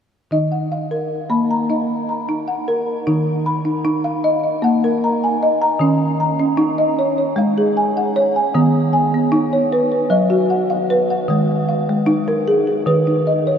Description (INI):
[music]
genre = world meditative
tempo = 153 BPM (eighths)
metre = 7/8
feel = straight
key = Eb minor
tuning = A4 = 440 Hz
[part]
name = folk marimba with medium mallets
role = arpeggios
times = 0.3-13.6 s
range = Eb3 to Cb6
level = -15 LUFS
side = equal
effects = none
[sound]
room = wet huge ambient reverb, RT60 8.3 s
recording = in a vast, echoing space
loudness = -15 LUFS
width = side -8 dB against mid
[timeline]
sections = 0.3-3.1 A section; 3.1-13.6 B section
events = none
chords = 0.3 Ebm; 5.8 Db/Eb; 8.5 B/D#; 11.3 Abm/Eb